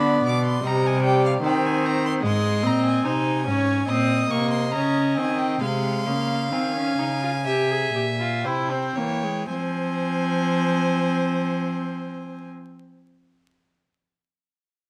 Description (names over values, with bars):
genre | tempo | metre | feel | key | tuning
classical, baroque-style fugue for string quartet | 55-77 BPM | 4/4 | straight | F minor | A4 = 440 Hz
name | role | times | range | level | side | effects
rich violin | melody | 0.0-12.5 s | F5 to Eb6 | -32 LUFS | equal | none
warm violin | second line | 0.0-12.5 s | C5 to F5 | -31 LUFS | equal | none
rich viola | accompaniment | 0.0-12.5 s | G3 to Ab4 | -27 LUFS | equal | none
rich cello | bass | 0.0-12.5 s | Ab2 to F3 | -28 LUFS | equal | none
room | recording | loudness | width
moderate recital hall reverb, RT60 1.6 s | close, detailed microphones, vinyl crackle | -23 LUFS | mono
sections
0.0-9.5 A section; 9.5-13.8 B section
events
slowing down 0.6-9.5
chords
0.0 G (rootless); 0.6 Cm; 2.2 Ab; 3.9 Bbm; 5.6 Fm/C; 7.5 C7; 9.5 Fm